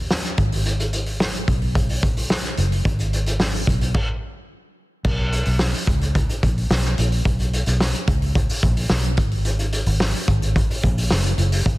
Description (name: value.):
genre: piano-driven pop.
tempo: 109 BPM.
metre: 4/4.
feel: straight.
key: unclear.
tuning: A4 = 439 Hz.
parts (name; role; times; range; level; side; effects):
vintage muted fingered electric bass; bass; 0.0-11.8 s; F#1 to D#2; -21 LUFS; equal; none.
loose indie drum kit; drums; 0.1-11.8 s; crash cymbal, hi-hat, kick drum, snare drum; -21 LUFS; equal; none.
room: little or no reverb.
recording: dense, heavily limited modern master.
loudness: -18 LUFS.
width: side -19 dB against mid.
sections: 0.0-5.1 A section; 5.1-11.8 B section.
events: stop 4.0-5.1.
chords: none.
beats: 0.10 | 0.66 1.21 1.75 2.30 | 2.85 3.40 3.95 4.50 | 5.05 5.60 6.15 6.70 | 7.25 7.80 8.35 8.90 | 9.45 10.00 10.55 11.10 | 11.65.